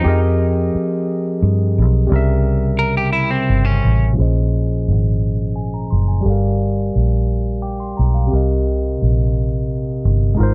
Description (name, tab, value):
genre	R&B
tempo	58 BPM (dotted quarters)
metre	6/8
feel	straight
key	unclear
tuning	A4 = 440 Hz
part	semi-hollow electric guitar	second line	0.0-4.1 s	C4 to Bb4	-23 LUFS	equal	warbly pitch drift, digital delay
part	barky tine electric piano	accompaniment	0.0-10.5 s	Bb2 to D6	-22 LUFS	equal	overdrive
part	vintage muted fingered electric bass	bass	0.1-10.5 s	Gb1 to G2	-19 LUFS	equal	none
room	light reverb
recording	dark, warm production, low-pass filter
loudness	-17 LUFS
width	mono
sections	0.0-4.2 A section; 4.2-10.5 B section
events	filter sweep 4.2-10.5; tine electric piano fill 7.3-8.3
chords	0.0 Fm11; 2.1 C7b9; 4.2 Bbm11; 6.2 Gm7; 8.3 Cm7